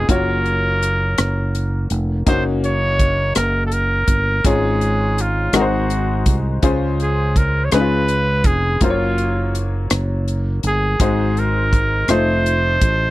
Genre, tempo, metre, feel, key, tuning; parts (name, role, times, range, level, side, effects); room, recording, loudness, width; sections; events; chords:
slow gospel; 55 BPM (dotted quarters); 6/8; straight; Db major; A4 = 441 Hz
clear trumpet; melody; 0.0-13.1 s; F4 to Db5; -20 LUFS; right 1 dB
bright concert grand piano; accompaniment; 0.0-13.1 s; Ab2 to Db5; -22 LUFS; left 3 dB
fingered electric bass; bass; 0.0-13.1 s; F1 to Db2; -20 LUFS; equal
crisp fusion drum kit; drums; 0.1-13.0 s; hi-hat, kick drum, rim click; -18 LUFS; equal
little or no reverb; dry, close 1970s-style studio recording; -15 LUFS; side -17 dB against mid
0.0-13.1 A section
0.1 Gbmaj7; 2.3 Ebm7/Gb; 4.5 Db/Ab; 5.5 Ab7; 6.6 Dbmaj7; 7.7 Db7; 8.8 Gbmaj7; 11.0 Ab7; 12.1 F7